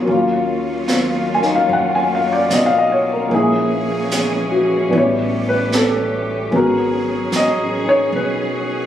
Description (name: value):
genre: jazz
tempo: 74 BPM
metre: 4/4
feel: swing 67% on 8ths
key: Eb minor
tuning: A4 = 440 Hz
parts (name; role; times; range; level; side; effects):
- warm baby grand piano; accompaniment; 0.0-8.9 s; Gb3 to Ab5; -17 LUFS; left 2 dB; none
- dark studio cello section; sustained chords; 0.0-8.9 s; Eb3 to Ab4; -22 LUFS; right 1 dB; none
- upright bass; bass; 0.0-8.9 s; Ab1 to Gb2; -25 LUFS; equal; none
- jazz brush drum kit; drums; 0.1-8.9 s; brushed snare drum, hi-hat, snare drum; -22 LUFS; right 1 dB; none
room: moderate large studio reverb, RT60 0.9 s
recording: recorded on a phone in the room, studio reverb, compression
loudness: -15 LUFS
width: side -10 dB against mid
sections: 0.1-8.9 A section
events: none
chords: 0.1 Ebm9; 3.3 Bbm7b5; 4.9 A9; 6.5 Abm7